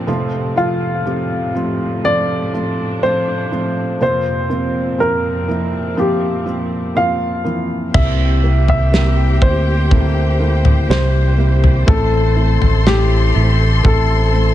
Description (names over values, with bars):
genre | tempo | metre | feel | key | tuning
pop ballad | 61 BPM | 4/4 | straight | unclear | A4 = 440 Hz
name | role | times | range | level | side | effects
felt-muted upright piano | accompaniment | 0.0-14.5 s | F1 to C5 | -21 LUFS | right 1 dB | none
warm symphonic string section | sustained chords | 0.0-14.5 s | F2 to C6 | -25 LUFS | left 2 dB | none
dark baby grand piano | melody | 0.6-14.5 s | F4 to F5 | -20 LUFS | left 1 dB | none
flamenco guitar | arpeggios | 7.9-14.5 s | A2 to Bb4 | -27 LUFS | left 9 dB | digital delay
fingered electric bass | bass | 7.9-14.5 s | A1 to D2 | -14 LUFS | equal | none
loose indie drum kit | drums | 7.9-14.1 s | crash cymbal, kick drum, snare drum, toms | -16 LUFS | equal | none
room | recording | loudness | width
small room reverb | nothing above 10.7 kHz | -13 LUFS | side -12 dB against mid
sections
0.0-7.9 A section; 7.9-14.5 B section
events
none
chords
0.1 F; 4.0 Bbsus2/F; 7.9 C7; 11.9 Am